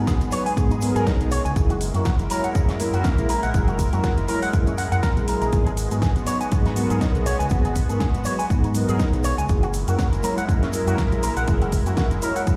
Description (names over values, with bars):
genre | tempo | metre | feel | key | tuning
nu-disco, nu disco | 121 BPM | 4/4 | swing 56% on 16ths | unclear | A4 = 440 Hz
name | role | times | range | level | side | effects
mellow synth brass | accompaniment | 0.0-12.6 s | F#3 to C#5 | -30 LUFS | equal | chorus, tape echo
lush unison pad | sustained chords | 0.0-12.6 s | G#3 to A#4 | -32 LUFS | equal | chorus, phaser, sidechain pumping
fingered electric bass with an envelope filter | bass | 0.0-12.6 s | F#1 to G#2 | -27 LUFS | equal | none
electric guitar with an envelope filter | riff | 0.1-12.4 s | C#4 to G#5 | -31 LUFS | equal | subtle chorus, low-pass filter, tape echo
electronic kick drum | drums | 0.1-12.6 s | none | -24 LUFS | equal | overdrive
pop drum kit | drums | 0.1-12.6 s | hi-hat, shaker, snare drum | -34 LUFS | equal | overdrive
egg shaker | percussion | 0.1-12.6 s | none | -45 LUFS | equal | none
room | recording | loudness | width
moderate lush hall reverb, RT60 1.8 s | played on a big sound system in a bare room, large studio reverb | -22 LUFS | mono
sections
0.0-12.6 A section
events
none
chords
0.0 G#m7; 1.6 F#9; 5.5 G#m7; 9.5 F#9